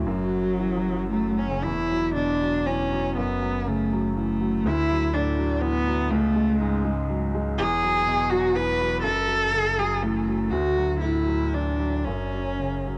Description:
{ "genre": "neoclassical piano and strings", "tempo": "111-126 BPM", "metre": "3/4", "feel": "rubato", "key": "F# minor", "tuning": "A4 = 440 Hz", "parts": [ { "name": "rich cello", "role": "second line", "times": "0.0-13.0 s", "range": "F#3 to B4", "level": "-26 LUFS", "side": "equal", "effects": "cassette tape, tape echo" }, { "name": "felt-muted upright piano", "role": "accompaniment", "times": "0.0-13.0 s", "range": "C#2 to F#4", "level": "-30 LUFS", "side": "equal", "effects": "cassette tape" }, { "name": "sub bass with octave", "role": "bass", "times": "0.0-13.0 s", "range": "E1 to D2", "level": "-33 LUFS", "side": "equal", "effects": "none" } ], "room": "light reverb, small room reverb", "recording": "home recording on cassette", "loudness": "-24 LUFS", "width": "mono", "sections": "0.0-1.7 A section; 1.7-13.0 B section", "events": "none", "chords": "0.1 F#5; 1.7 Esus2; 3.2 F#m; 4.7 D; 6.1 C#5; 7.6 Eadd9; 9.0 F#m; 10.5 D; 12.1 F#5", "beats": "| 0.05 0.59 1.13 | 1.67 2.17 2.67 | 3.17 3.67 4.16 | 4.65 5.14 5.63 | 6.12 6.60 7.09 | 7.58 8.06 8.55 | 9.03 9.53 10.03 | 10.51 11.01 11.53 | 12.06 12.60" }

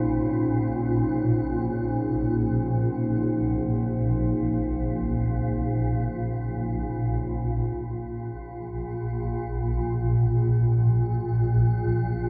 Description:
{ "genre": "dark ambient drone", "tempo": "free time", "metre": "none", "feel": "none", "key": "unclear", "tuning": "A4 = 441 Hz", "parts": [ { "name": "dark analog pad", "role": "sustained chords", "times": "0.0-7.4 s", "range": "Bb3 to C5", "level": "-34 LUFS", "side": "equal", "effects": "chorus" }, { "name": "bronze singing bowl", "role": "arpeggios", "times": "0.0-4.5, 10.5-12.3 s", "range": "Ab2 to Eb4", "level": "-34 LUFS", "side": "equal", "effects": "tape echo" }, { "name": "swarming drone", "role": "drone", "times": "0.0-12.3 s", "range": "Bb1 to Bb2", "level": "-27 LUFS", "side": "equal", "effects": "built-in reverb" } ], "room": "wet huge ambient reverb, RT60 8.0 s", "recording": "none", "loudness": "-25 LUFS", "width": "mono", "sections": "0.0-7.4 A section; 7.4-12.3 B section", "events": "none", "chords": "0.0 Bbmadd9; 7.4 N.C.", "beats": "free time" }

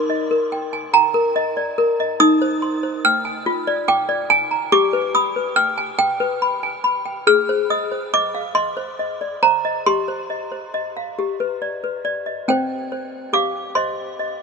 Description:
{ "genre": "classical, lullaby for toy piano", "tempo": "47 BPM (dotted quarters)", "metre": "6/8", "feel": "straight", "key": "C minor", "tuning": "A4 = 440 Hz", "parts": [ { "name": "toy piano", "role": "solo", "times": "0.0-14.4 s", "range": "C4 to F6", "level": "-17 LUFS", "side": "equal", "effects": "none" } ], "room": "moderate huge ambient reverb, RT60 7.4 s", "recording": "nothing above 10.8 kHz", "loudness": "-17 LUFS", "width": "side -4 dB against mid", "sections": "0.0-12.5 A section; 12.5-14.4 B section", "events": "none", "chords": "0.0 Eb; 2.2 Cm/Eb; 3.5 Ddim/F; 4.7 G; 7.3 Ab (rootless); 9.9 Cm/G; 11.2 G; 12.5 Cm", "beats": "0.95 | 2.21 3.47 | 4.73 6.00 | 7.27 8.56 | 9.86 11.17 | 12.47 13.75" }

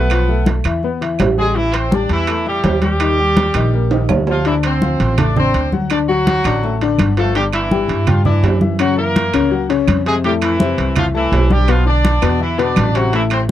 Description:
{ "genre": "latin, salsa", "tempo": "166 BPM", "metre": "4/4", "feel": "straight", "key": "unclear", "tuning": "A4 = 444 Hz", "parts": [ { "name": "bright horn section", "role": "melody", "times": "0.0-13.4 s", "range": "E3 to D5", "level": "-19 LUFS", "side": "right 1 dB", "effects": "none" }, { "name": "bright upright piano", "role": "accompaniment", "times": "0.0-13.5 s", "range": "A2 to D6", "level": "-19 LUFS", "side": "left 8 dB", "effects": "none" }, { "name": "upright bass", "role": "bass", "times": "0.0-13.5 s", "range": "G1 to G2", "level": "-18 LUFS", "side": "right 1 dB", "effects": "none" }, { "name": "claves", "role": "percussion", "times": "0.1-13.5 s", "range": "none", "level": "-28 LUFS", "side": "right 20 dB", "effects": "none" }, { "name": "congas", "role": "percussion", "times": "0.1-13.5 s", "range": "none", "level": "-19 LUFS", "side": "equal", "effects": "none" }, { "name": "timbales", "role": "percussion", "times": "0.1-13.5 s", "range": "none", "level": "-23 LUFS", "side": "right 6 dB", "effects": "none" } ], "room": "little or no reverb", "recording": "dry, close 1970s-style studio recording", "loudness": "-13 LUFS", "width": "side -12 dB against mid", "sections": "0.0-4.5 A section; 4.5-13.5 A section", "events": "drum fill 3.9-4.5", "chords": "0.1 Fmaj7#11/B; 0.8 E; 1.6 Am7; 3.0 Ebadd9; 4.5 Dm7; 5.9 D; 7.4 G5; 8.8 F#7; 10.2 Fmaj9; 11.7 Bdim; 12.4 E5", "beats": "| 0.10 0.46 0.83 1.19 | 1.55 1.92 2.28 2.64 | 3.00 3.37 3.73 4.09 | 4.46 4.82 5.18 5.54 | 5.90 6.27 6.63 6.99 | 7.35 7.71 8.07 8.44 | 8.80 9.16 9.52 9.88 | 10.24 10.60 10.96 11.33 | 11.69 12.05 12.41 12.77 | 13.13 13.49" }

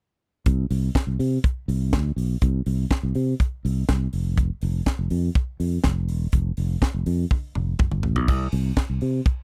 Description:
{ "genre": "disco", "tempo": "123 BPM", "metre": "4/4", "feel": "straight", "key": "C major", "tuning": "A4 = 439 Hz", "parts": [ { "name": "fingered electric bass", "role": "bass", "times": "0.5-9.2 s", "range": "E1 to C3", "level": "-25 LUFS", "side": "equal", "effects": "none" }, { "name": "tight funk drum kit", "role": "drums", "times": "0.5-9.4 s", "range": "crash cymbal, hi-hat, kick drum, snare drum, toms", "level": "-24 LUFS", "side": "equal", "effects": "none" } ], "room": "little or no reverb", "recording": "dry, close 1970s-style studio recording", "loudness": "-24 LUFS", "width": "mono", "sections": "0.5-9.4 A section", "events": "drum fill 7.3-8.3", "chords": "none", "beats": "| 0.46 0.95 1.44 1.93 | 2.42 2.90 3.39 3.88 | 4.37 4.86 5.35 5.83 | 6.32 6.81 7.30 7.79 | 8.28 8.77 9.26" }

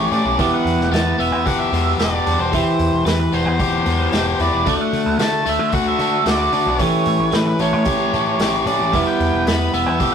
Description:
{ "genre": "indie rock", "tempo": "112 BPM", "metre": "4/4", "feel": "straight", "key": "D major", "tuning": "A4 = 441 Hz", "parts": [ { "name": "octave-fuzz lead guitar", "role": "melody", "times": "0.0-10.1 s", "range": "B4 to B5", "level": "-22 LUFS", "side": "right 4 dB", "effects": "distortion" }, { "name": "crunchy overdriven guitar", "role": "riff", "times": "0.0-10.1 s", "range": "E3 to G4", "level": "-19 LUFS", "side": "left 5 dB", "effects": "none" }, { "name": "overdriven electric guitar", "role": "riff", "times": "0.0-10.1 s", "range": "E3 to G4", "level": "-25 LUFS", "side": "right 7 dB", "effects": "none" }, { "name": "growling picked electric bass", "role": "bass", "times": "0.0-10.1 s", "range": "E1 to D3", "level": "-23 LUFS", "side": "equal", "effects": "overdrive" }, { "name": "vintage drum kit", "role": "drums", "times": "0.1-10.1 s", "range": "hi-hat, kick drum, snare drum", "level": "-25 LUFS", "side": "right 1 dB", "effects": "none" } ], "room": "moderate stone room reverb, RT60 1.3 s", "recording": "rough rehearsal-room recording, warm saturation", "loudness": "-15 LUFS", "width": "side -7 dB against mid", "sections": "0.0-10.1 A section", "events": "none", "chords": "0.4 Em7; 2.5 Cmaj7/E; 4.7 D; 6.8 A7; 8.9 Em", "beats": "| 0.39 0.92 1.46 1.99 | 2.53 3.06 3.59 4.13 | 4.66 5.20 5.73 6.26 | 6.80 7.33 7.87 8.40 | 8.93 9.47 10.00" }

